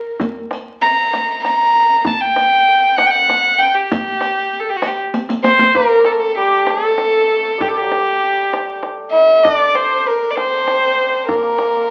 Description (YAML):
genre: Persian modal ensemble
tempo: 65 BPM (dotted quarters)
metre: 6/8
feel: straight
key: G avaz esfahan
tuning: A4 = 440 Hz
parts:
  - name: warm violin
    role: melody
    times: 0.0-11.9 s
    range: F#4 to Bb5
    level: -16 LUFS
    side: equal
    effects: none
  - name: riq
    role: percussion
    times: 0.2-5.7 s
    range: none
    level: -25 LUFS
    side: equal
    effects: none
  - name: tombak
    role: percussion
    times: 0.2-11.7 s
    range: none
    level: -28 LUFS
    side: equal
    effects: none
  - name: santur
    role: second line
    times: 5.4-11.9 s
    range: F#3 to E4-50c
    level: -23 LUFS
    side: equal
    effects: none
room: wet large studio reverb, RT60 0.8 s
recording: very old 78 rpm record, vinyl crackle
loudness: -15 LUFS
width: mono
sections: 0.0-5.7 A section; 5.7-11.9 B section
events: drum fill 5.1-5.7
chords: none